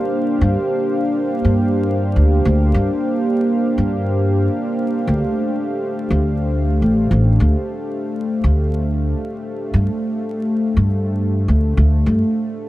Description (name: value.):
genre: ambient dub.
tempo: 103 BPM.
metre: 4/4.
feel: swing 54% on 16ths.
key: unclear.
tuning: A4 = 440 Hz.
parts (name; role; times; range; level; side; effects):
warm analog pad; sustained chords; 0.0-12.7 s; A3 to F5; -19 LUFS; equal; chorus.
upright bass; bass; 0.4-12.2 s; A1 to G2; -15 LUFS; equal; none.
room: moderate spring reverb, RT60 2.3 s.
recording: vinyl crackle.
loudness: -16 LUFS.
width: side -16 dB against mid.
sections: 0.0-12.7 A section.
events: none.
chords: 0.4 Gm7; 5.1 Dm7; 9.7 G9sus4.